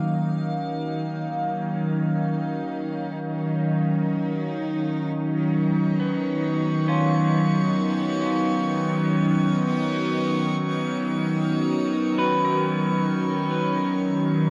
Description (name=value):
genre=ambient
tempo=free time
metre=none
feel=none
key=unclear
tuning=A4 = 444 Hz
part: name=evolving wavetable pad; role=sustained chords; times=0.0-14.5 s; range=Eb3 to F5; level=-25 LUFS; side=equal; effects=phaser, built-in reverb
part: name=bowed-like drone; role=drone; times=0.0-14.5 s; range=Eb3 to Eb4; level=-32 LUFS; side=equal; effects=built-in reverb
part: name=drifting glass-harmonics texture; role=texture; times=5.6-14.5 s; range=C#6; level=-36 LUFS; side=equal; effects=chorus, built-in reverb
part: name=clean electric guitar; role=arpeggios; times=6.0-14.5 s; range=B3 to B4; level=-31 LUFS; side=equal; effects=spring reverb, diffuse ambient delay
room=wet cathedral reverb, RT60 6.3 s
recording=worn, warbling old tape, cassette tape, warbly pitch drift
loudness=-24 LUFS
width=mono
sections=0.0-14.5 A section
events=none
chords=0.0 Ebm7; 5.1 Bsus2/Eb